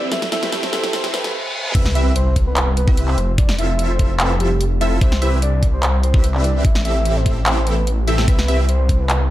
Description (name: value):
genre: future bass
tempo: 147 BPM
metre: 4/4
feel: half-time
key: C major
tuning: A4 = 441 Hz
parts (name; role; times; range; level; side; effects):
- soft octave-layered synth lead; melody; 0.0-9.2 s; G4 to E5; -26 LUFS; left 1 dB; chorus, tremolo, sidechain pumping, digital delay
- ethereal airy pad; sustained chords; 0.0-1.3 s; none; barely audible; none; none
- dense compressed supersaw; riff; 0.0-8.6 s; C4 to E5; -25 LUFS; right 1 dB; sidechain pumping
- riser, reverse cymbal and sub drop; sound effects; 0.0-3.4 s; none; -26 LUFS; equal; none
- felt-muted upright piano; accompaniment; 0.1-1.3 s; A3 to B4; -29 LUFS; equal; sidechain pumping, digital delay
- dubstep drum kit; drums; 0.1-9.2 s; crash cymbal, handclaps, hi-hat, snare drum; -22 LUFS; equal; none
- wide unison pluck; arpeggios; 1.7-8.7 s; E5; -29 LUFS; right 1 dB; sidechain pumping
- wide detuned saw bass; bass; 1.7-9.3 s; F1 to C2; -18 LUFS; equal; chorus, sidechain pumping
- electronic kick drum; drums; 1.7-9.0 s; none; -16 LUFS; equal; none
room: light reverb, digital ambience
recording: dark, warm production, high-pass filter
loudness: -15 LUFS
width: side -14 dB against mid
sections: 0.0-1.7 A section; 1.7-9.3 B section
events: build-up 0.0-1.7; drum fill 0.0-1.3; riser 0.0-1.7; filter sweep 0.0-1.7; reverse cymbal 0.9-1.7; drop 1.7-9.3; impact 1.7-3.4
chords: 0.1 Am7; 1.7 Cmaj7; 3.2 Fmaj7; 5.0 Cmaj7; 6.6 Am7; 8.3 Cmaj7